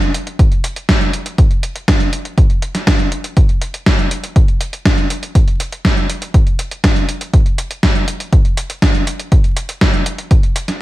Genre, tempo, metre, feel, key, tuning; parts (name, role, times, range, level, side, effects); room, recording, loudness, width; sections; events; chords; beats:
italo disco; 121 BPM; 4/4; straight
gated 80s digital drum machine; drums; 0.0-10.8 s; hi-hat, snare drum; -17 LUFS; right 1 dB; gated reverb, gated reverb snare, small room ambience
electronic kick drum; drums; 0.4-10.4 s; -12 LUFS; equal; small room ambience
digital ambience; vinyl crackle; -12 LUFS; side -17 dB against mid
0.0-10.8 A section
0.39 0.89 | 1.38 1.88 2.38 2.87 | 3.37 3.86 4.36 4.86 | 5.35 5.85 6.34 6.84 | 7.33 7.83 8.33 8.82 | 9.32 9.81 10.31